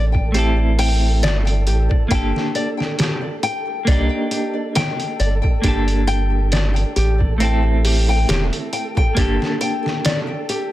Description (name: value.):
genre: trip hop.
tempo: 68 BPM.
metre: 4/4.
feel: swing 55% on 16ths.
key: G minor.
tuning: A4 = 440 Hz.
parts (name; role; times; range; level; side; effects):
semi-hollow electric guitar; accompaniment; 0.0-10.7 s; A3 to A4; -24 LUFS; right 1 dB; tremolo, tape echo.
nylon-string guitar; arpeggios; 0.0-10.7 s; G4 to G5; -24 LUFS; left 4 dB; digital delay.
soft dub sub bass; bass; 0.0-9.4 s; E1 to C2; -18 LUFS; equal; tube saturation.
flickering grainy texture; texture; 0.0-10.7 s; A4; -32 LUFS; right 2 dB; built-in reverb.
trip hop sampler-style drum kit; drums; 0.1-10.7 s; hi-hat, kick drum, snare drum; -21 LUFS; equal; none.
room: little or no reverb.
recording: dense, heavily limited modern master.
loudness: -16 LUFS.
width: side -15 dB against mid.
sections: 0.0-10.7 A section.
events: none.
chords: 0.3 Am; 2.1 Gmadd9; 3.9 Cm7; 5.6 Gmadd9; 7.4 Am; 9.2 Gmadd9.